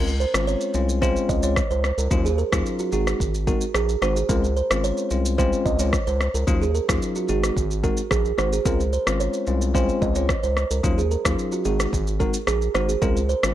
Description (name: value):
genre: afrobeats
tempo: 110 BPM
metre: 4/4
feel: straight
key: Db major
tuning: A4 = 436 Hz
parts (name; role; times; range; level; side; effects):
- bell-like tine electric piano; accompaniment; 0.0-13.5 s; Gb3 to Gb4; -27 LUFS; left 5 dB; none
- kalimba; riff; 0.0-13.4 s; Gb4 to Eb5; -25 LUFS; right 6 dB; tape echo
- round analog bass; bass; 0.0-13.5 s; Ab1 to Eb2; -24 LUFS; equal; none
- afro-pop drum kit; drums; 0.1-13.5 s; kick drum, rim click, shaker; -25 LUFS; equal; none
room: little or no reverb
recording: dry, gritty hardware recording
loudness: -20 LUFS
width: side -12 dB against mid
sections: 0.0-13.5 A section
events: none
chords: 0.0 Dbmaj7; 2.1 Ebm9; 2.9 Ab7; 4.3 Dbmaj7; 6.5 Ebm9; 7.3 Ab7; 8.7 Dbmaj7; 10.8 Ebm9; 11.7 Ab7; 13.0 Dbmaj7